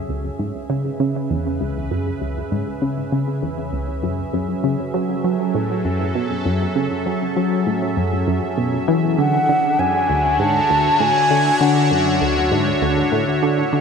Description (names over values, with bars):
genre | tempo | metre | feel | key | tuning
ambient, sequencer-driven space music | 99 BPM | 4/4 | straight | F# minor | A4 = 440 Hz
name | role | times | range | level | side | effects
sweeping resonant pad | sustained chords | 0.0-13.8 s | C#3 to E5 | -22 LUFS | equal | chorus
tight sequenced synth | riff | 0.1-13.8 s | C#2 to F#3 | -20 LUFS | equal | chorus, analog delay
breathy mellow concert flute | melody | 9.2-12.2 s | F#5 to A5 | -18 LUFS | equal | analog delay
room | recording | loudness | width
wet plate reverb, RT60 3.4 s | echo-heavy mix, cassette tape | -17 LUFS | side -6 dB against mid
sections
0.0-13.8 A section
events
fade-in on analog synth pad 0.0-13.8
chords
0.0 C#m7; 4.3 F#m7; 9.2 Dmaj7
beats
0.09 0.70 1.30 | 1.91 2.52 3.12 3.73 | 4.33 4.94 5.55 6.15 | 6.76 7.37 7.97 8.58 | 9.18 9.79 10.39 11.00 | 11.61 12.21 12.82 13.43